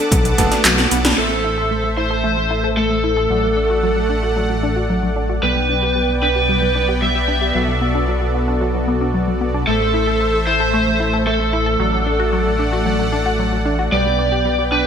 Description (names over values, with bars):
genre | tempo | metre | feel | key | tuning
synthwave | 113 BPM | 4/4 | straight | A dorian | A4 = 440 Hz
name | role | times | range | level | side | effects
lead guitar through a small cranked amp | melody | 0.0-14.9 s | A4 to E5 | -20 LUFS | right 1 dB | overdrive, lush chorus, ping-pong delay
soft supersaw | sustained chords | 0.0-14.9 s | A3 to D6 | -22 LUFS | equal | sidechain pumping
analog pluck | arpeggios | 0.0-14.8 s | F#3 to A4 | -23 LUFS | left 1 dB | chorus, phaser, ping-pong delay
bright electric grand piano | stabs | 0.0-1.1 s | A3 to A4 | -24 LUFS | right 2 dB | none
wide detuned saw bass | bass | 0.1-14.9 s | F#1 to B1 | -21 LUFS | equal | chorus, sidechain pumping
80s electronic pad drums | drums | 0.1-1.3 s | crash cymbal, handclaps, hi-hat, snare drum | -17 LUFS | equal | overdrive, low-pass filter on hats, low-pass filter on snare, low-pass filter on cymbals, low-pass filter on room, gated reverb
electronic kick drum | drums | 0.1-0.5 s | none | -17 LUFS | equal | overdrive
room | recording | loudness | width
moderate lush hall reverb, RT60 1.9 s | bright 1980s-style digital production | -15 LUFS | side -8 dB against mid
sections
0.0-1.2 A section; 1.2-14.9 B section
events
drum fill 0.6-1.2; band accent 1.0; filter sweep on synth arpeggio sound 1.2-14.9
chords
0.0 Bm7; 1.2 Am; 3.3 D/A; 5.4 G/B; 7.5 Bm7; 9.7 Am; 11.8 D/A; 13.9 G/B